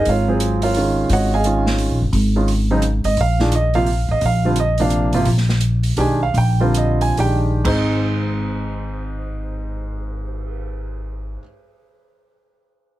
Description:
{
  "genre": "modal jazz",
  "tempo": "120-174 BPM",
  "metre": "3/4",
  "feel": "swing 63% on 8ths",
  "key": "Ab major",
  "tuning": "A4 = 438 Hz",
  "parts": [
    { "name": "warm baby grand piano", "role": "accompaniment", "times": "0.0-11.4 s", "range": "Ab2 to Ab5", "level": "-20 LUFS", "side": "right 2 dB", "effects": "none" },
    { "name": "upright bass", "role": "bass", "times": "0.0-11.3 s", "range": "G1 to Cb2", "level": "-19 LUFS", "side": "equal", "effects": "none" },
    { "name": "open jazz drum kit", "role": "drums", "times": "0.1-10.5 s", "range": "crash cymbal, cymbal swell, hi-hat, kick drum, snare drum", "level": "-29 LUFS", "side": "right 2 dB", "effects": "none" }
  ],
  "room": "light reverb",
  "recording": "heavily compressed radio sound, multiband compression",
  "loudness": "-16 LUFS",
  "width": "side -15 dB against mid",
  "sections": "0.0-7.7 A section; 7.7-10.6 B section",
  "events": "slowing down 5.3-7.7",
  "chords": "0.0 Ab13sus4; 3.2 Bb13sus4; 7.7 Ab"
}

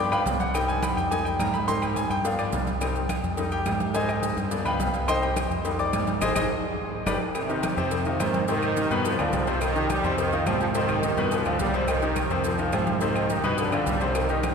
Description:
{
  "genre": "latin, salsa",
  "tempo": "212 BPM",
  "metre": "4/4",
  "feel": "straight",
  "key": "C harmonic minor",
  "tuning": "A4 = 440 Hz",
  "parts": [
    { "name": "bright grand piano", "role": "accompaniment", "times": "0.0-14.5 s", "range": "B2 to D6", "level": "-26 LUFS", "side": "left 2 dB", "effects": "none" },
    { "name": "deep dub fingered electric bass", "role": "bass", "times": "0.0-14.5 s", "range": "G1 to Ab2", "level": "-30 LUFS", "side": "right 1 dB", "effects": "none" },
    { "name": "agogo bells and timbales", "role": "percussion", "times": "0.1-14.5 s", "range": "none", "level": "-33 LUFS", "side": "right 2 dB", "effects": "none" },
    { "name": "claves", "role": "percussion", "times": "0.1-14.5 s", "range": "none", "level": "-40 LUFS", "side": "left 3 dB", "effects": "none" },
    { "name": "congas", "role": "percussion", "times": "0.1-14.5 s", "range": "none", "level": "-34 LUFS", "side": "right 1 dB", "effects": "none" },
    { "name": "maracas", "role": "percussion", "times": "0.1-14.5 s", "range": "none", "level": "-43 LUFS", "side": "right 6 dB", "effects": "none" },
    { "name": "cowbell", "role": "percussion", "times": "0.3-14.5 s", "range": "none", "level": "-35 LUFS", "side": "left 6 dB", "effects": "none" },
    { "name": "brilliant trombone section", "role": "second line", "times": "7.3-14.5 s", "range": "C3 to G3", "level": "-28 LUFS", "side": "right 3 dB", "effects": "none" }
  ],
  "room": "wet cathedral reverb, RT60 5.6 s",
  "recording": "recorded in a church or concert hall",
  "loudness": "-23 LUFS",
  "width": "side -6 dB against mid",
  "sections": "0.0-7.3 A section; 7.3-14.5 B section",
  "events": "grand piano solo 0.0-7.3; band accent 6.2-7.3; drum fill 6.9-7.3",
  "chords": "0.0 G7; 0.5 Cm; 1.1 Fm7; 1.7 Abmaj7; 2.2 G7; 2.8 Cm; 3.4 Fm7; 3.9 Abmaj7; 4.5 G7; 5.1 Cm; 5.6 Fm7; 6.2 Ab; 6.8 G; 7.3 Cm; 7.9 Fm7; 8.5 Abmaj7; 9.1 G7; 9.6 Cm; 10.2 Fm7; 10.8 Abmaj7; 11.3 G7; 11.9 Cm; 12.5 Fm7; 13.0 Abmaj7; 13.6 G7"
}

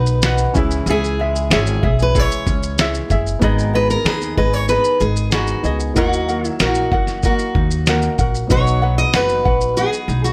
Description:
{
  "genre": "acoustic pop",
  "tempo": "94 BPM",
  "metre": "4/4",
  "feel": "straight",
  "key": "unclear",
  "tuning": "A4 = 440 Hz",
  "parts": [
    { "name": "fingerpicked steel-string acoustic guitar", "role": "melody", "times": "0.0-10.3 s", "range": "F#4 to D#5", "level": "-23 LUFS", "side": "equal", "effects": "none" },
    { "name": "felt-muted upright piano", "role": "accompaniment", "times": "0.0-10.3 s", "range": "A#3 to E5", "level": "-31 LUFS", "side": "equal", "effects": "none" },
    { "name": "ukulele", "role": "accompaniment", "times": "0.0-10.3 s", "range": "D#4 to F#5", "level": "-26 LUFS", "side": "equal", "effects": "none" },
    { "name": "nylon-string guitar", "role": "arpeggios", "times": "0.0-10.3 s", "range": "D#3 to G#4", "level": "-31 LUFS", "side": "equal", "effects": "none" },
    { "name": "upright bass", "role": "bass", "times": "0.0-10.3 s", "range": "F#1 to D#2", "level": "-22 LUFS", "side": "equal", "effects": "none" },
    { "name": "dusty soul sampler-style drum kit", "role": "drums", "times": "0.1-10.3 s", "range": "kick drum, shaker, snare drum", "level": "-22 LUFS", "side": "equal", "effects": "none" }
  ],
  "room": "light reverb",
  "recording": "none",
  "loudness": "-17 LUFS",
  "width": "mono",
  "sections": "0.0-10.3 A section",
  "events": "none",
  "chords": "0.0 B; 0.6 C#m; 3.4 G#m; 6.0 D#m; 8.5 B"
}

